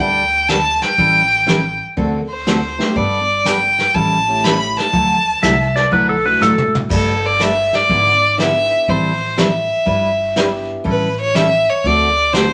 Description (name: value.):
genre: country, western swing.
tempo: 122 BPM.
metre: 4/4.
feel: swing 67% on 8ths.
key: unclear.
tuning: A4 = 439 Hz.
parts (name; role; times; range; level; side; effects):
clear fiddle; melody; 0.0-12.5 s; A4 to B5; -17 LUFS; equal; none.
picked steel-string acoustic guitar; accompaniment; 0.0-12.5 s; D3 to B4; -22 LUFS; equal; none.
upright bass; bass; 0.0-12.5 s; G1 to D2; -28 LUFS; equal; none.
vintage brush drum kit; drums; 0.5-12.5 s; brushed snare drum, crash cymbal, hi-hat, kick drum, snare drum, toms; -24 LUFS; equal; none.
dark upright piano; accompaniment; 2.8-12.5 s; A3 to G#4; -27 LUFS; equal; none.
clean lap steel guitar; second line; 5.4-6.7 s; A4 to E5; -17 LUFS; equal; none.
room: wet studio reverb, RT60 0.7 s.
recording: none.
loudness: -15 LUFS.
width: mono.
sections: 0.0-12.5 A section.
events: drum fill 6.4-6.9.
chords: 0.0 Dsus4; 1.0 A7; 2.0 D7; 3.0 Gadd9; 3.9 A7; 4.9 Dadd9; 6.9 Gsus2; 7.9 E7/G#; 8.9 Am7; 9.9 Em7/G; 10.9 A7; 11.8 D7.